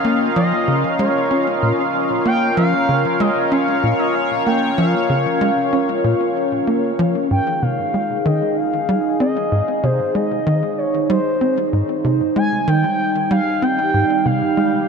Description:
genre	ambient, sequencer-driven space music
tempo	95 BPM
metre	4/4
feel	straight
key	Ab major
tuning	A4 = 440 Hz
part	expressive portamento lead	melody	0.0-14.9 s	C5 to Ab5	-22 LUFS	left 1 dB	chorus, vintage 12-bit sampler grit, ping-pong delay
part	sweeping resonant pad	sustained chords	0.0-14.9 s	G3 to F5	-19 LUFS	right 1 dB	chorus
part	tight sequencer bass	riff	0.0-14.8 s	Ab2 to Db4	-20 LUFS	equal	wide subtle chorus, ping-pong delay
room	wet huge ambient reverb, RT60 9.4 s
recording	none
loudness	-15 LUFS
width	side -5 dB against mid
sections	0.0-14.9 A section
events	none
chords	0.0 Bbm; 7.3 Ab

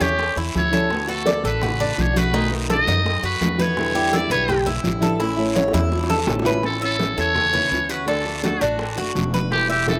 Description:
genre	latin, Cuban son and guajira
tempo	167 BPM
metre	4/4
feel	straight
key	D major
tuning	A4 = 441 Hz
part	trumpet with metal mute	melody	0.0-10.0 s	F#4 to D#5	-25 LUFS	equal	none
part	flamenco guitar	accompaniment	0.0-10.0 s	B2 to F#4	-29 LUFS	equal	none
part	Cuban tres	arpeggios	0.0-10.0 s	C#4 to E5	-27 LUFS	equal	slapback echo
part	upright bass	bass	0.0-10.0 s	E1 to F#2	-29 LUFS	equal	none
part	bongos	percussion	0.0-10.0 s	none	-32 LUFS	equal	slapback echo
part	congas	percussion	0.0-10.0 s	none	-28 LUFS	equal	none
part	guiro	percussion	0.0-10.0 s	none	-35 LUFS	equal	none
room	little or no reverb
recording	recorded outdoors, with no room sound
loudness	-21 LUFS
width	mono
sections	0.0-6.6 A section; 6.6-10.0 B section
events	muted trumpet solo 0.0-6.6; drum fill 5.6-6.6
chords	0.0 A7; 0.9 D6; 2.3 B7; 3.8 Em7; 5.2 A; 6.6 Aadd9; 8.1 D

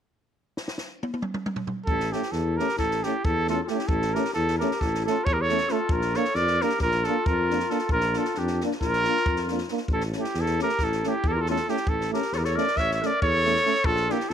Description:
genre	balkan folk, Balkan brass band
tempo	270 BPM (eighths)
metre	9/8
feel	straight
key	A phrygian dominant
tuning	A4 = 440 Hz
part	compact cocktail drum kit	percussion	0.6-14.3 s	kick drum, snare drum, toms	-31 LUFS	equal	none
part	mellow trumpet	melody	1.9-14.3 s	G4 to E5	-26 LUFS	right 3 dB	none
part	warm clarinet	second line	1.9-14.3 s	D4 to C#5	-31 LUFS	left 12 dB	tape echo
part	mellow tuba	bass	1.9-14.3 s	A1 to F2	-29 LUFS	equal	none
part	warm euphonium	accompaniment	2.1-14.2 s	C#4 to D4	-33 LUFS	left 14 dB	none
part	warm euphonium	accompaniment	2.1-14.2 s	A3 to Bb3	-32 LUFS	right 13 dB	none
room	light reverb, small room ambience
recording	1960s-style stereo with parts hard left and right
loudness	-22 LUFS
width	side -8 dB against mid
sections	0.0-1.9 A section; 1.9-14.3 B section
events	drum fill 0.5-1.9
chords	0.0 N.C.; 1.9 A; 5.9 Bb; 9.9 A

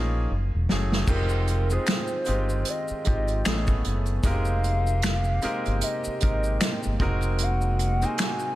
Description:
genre	R&B, neo-soul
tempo	76 BPM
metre	4/4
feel	swing 58% on 16ths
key	F minor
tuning	A4 = 440 Hz
part	gliding portamento lead	melody	0.0-8.6 s	Bb4 to Ab5	-31 LUFS	equal	chorus
part	clear grand piano	accompaniment	0.0-8.6 s	F3 to C5	-31 LUFS	equal	none
part	deep dub fingered electric bass	bass	0.0-8.0 s	Fb1 to Bb1	-25 LUFS	equal	none
part	unplugged drum kit	drums	0.7-8.4 s	crash cymbal, finger snaps, hi-hat, kick drum, snare drum	-27 LUFS	equal	none
part	chorused pulse-width pad	sustained chords	1.1-8.6 s	C3 to G5	-36 LUFS	equal	none
part	tube shaker and finger snaps	percussion	1.1-8.6 s	none	-40 LUFS	left 3 dB	none
room	light reverb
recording	none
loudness	-22 LUFS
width	side -15 dB against mid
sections	0.0-1.1 A section; 1.1-8.6 B section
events	drum fill 0.0-1.1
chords	0.3 Gbm9; 1.1 Fm9; 3.4 Amaj9; 4.2 Abmaj9/F; 7.0 Ab9/F

